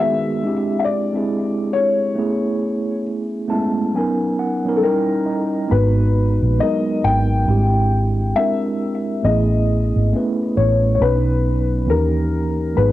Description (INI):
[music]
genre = hip hop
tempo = 68 BPM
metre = 4/4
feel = swing 60% on 16ths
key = G# minor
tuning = A4 = 440 Hz
[part]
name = felt-muted upright piano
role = melody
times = 0.0-12.9 s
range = A4 to G5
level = -22 LUFS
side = left 5 dB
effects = low-pass filter, cassette tape
[part]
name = mellow tine electric piano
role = accompaniment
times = 0.0-12.9 s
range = D#3 to A5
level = -20 LUFS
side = right 1 dB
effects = medium stereo tremolo, cassette tape, low-pass filter
[part]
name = vintage muted fingered electric bass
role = bass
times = 5.7-12.9 s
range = G#1 to D#2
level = -17 LUFS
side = right 1 dB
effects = none
[sound]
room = moderate small room reverb, RT60 0.5 s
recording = home recording on cassette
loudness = -16 LUFS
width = side -14 dB against mid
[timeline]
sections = 0.0-5.7 A section; 5.7-12.9 B section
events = none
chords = 0.4 E7alt/G#; 2.2 Amaj9; 3.9 Bmaj9; 4.8 D#7b9; 5.7 G#m9; 7.5 E7alt/G#; 9.2 Amaj9; 11.0 Badd9; 11.9 D#7b9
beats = 0.42 1.30 | 2.18 3.06 3.95 4.83 | 5.71 6.59 7.48 8.36 | 9.24 10.12 11.01 11.89 | 12.77